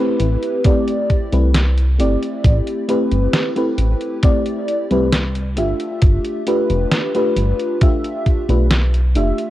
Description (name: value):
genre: vaporwave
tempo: 67 BPM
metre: 4/4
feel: straight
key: A minor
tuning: A4 = 440 Hz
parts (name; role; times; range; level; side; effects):
- FM electric piano with soft pad layer; accompaniment; 0.0-9.5 s; A3 to E5; -19 LUFS; equal; wide subtle chorus, tape echo
- chorused synth bass; bass; 0.2-9.3 s; F1 to C2; -16 LUFS; equal; none
- detuned 8-bit digital drum machine; drums; 0.2-9.5 s; hi-hat, snare drum; -22 LUFS; equal; small room ambience
- electronic kick drum; drums; 0.7-8.4 s; none; -14 LUFS; equal; small room ambience
room: light reverb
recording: worn, warbling old tape, cassette tape, warbly pitch drift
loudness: -15 LUFS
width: side -14 dB against mid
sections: 0.0-9.5 A section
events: none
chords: 0.0 Am7; 6.0 G7